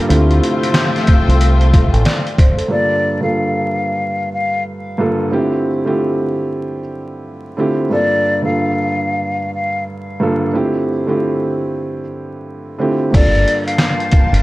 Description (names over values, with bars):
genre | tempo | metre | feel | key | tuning
hip hop, boom-bap hip-hop | 92 BPM | 4/4 | swing 62% on 16ths | G dorian | A4 = 440 Hz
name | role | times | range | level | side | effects
dark grand piano | accompaniment | 0.0-14.4 s | G2 to D5 | -18 LUFS | right 1 dB | high-pass filter, low-pass filter
lush unison pad | sustained chords | 0.0-2.7, 13.6-14.4 s | F3 to A5 | -25 LUFS | left 1 dB | chorus, phaser, high-pass filter, low-pass filter
warm studio string section | stabs | 0.0-2.7 s | C3 to F4 | -21 LUFS | left 4 dB | high-pass filter, low-pass filter, analog delay
deep dub fingered electric bass | bass | 0.1-2.0, 13.1-14.4 s | G1 to D2 | -12 LUFS | equal | none
trip hop sampler-style drum kit | drums | 0.1-2.7, 13.1-14.4 s | crash cymbal, hi-hat, kick drum, rim click, snare drum | -14 LUFS | equal | none
breathy mellow silver concert flute | melody | 2.7-14.4 s | D5 to F5 | -18 LUFS | left 2 dB | high-pass filter, low-pass filter
room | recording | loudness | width
light reverb | vinyl crackle | -13 LUFS | side -18 dB against mid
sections
0.0-2.7 A section; 2.7-13.1 B section; 13.1-14.4 A section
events
none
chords
0.1 Dm11; 2.7 Gm9; 5.3 Dm11; 7.9 Gm9; 10.5 Dm11; 13.1 Gm9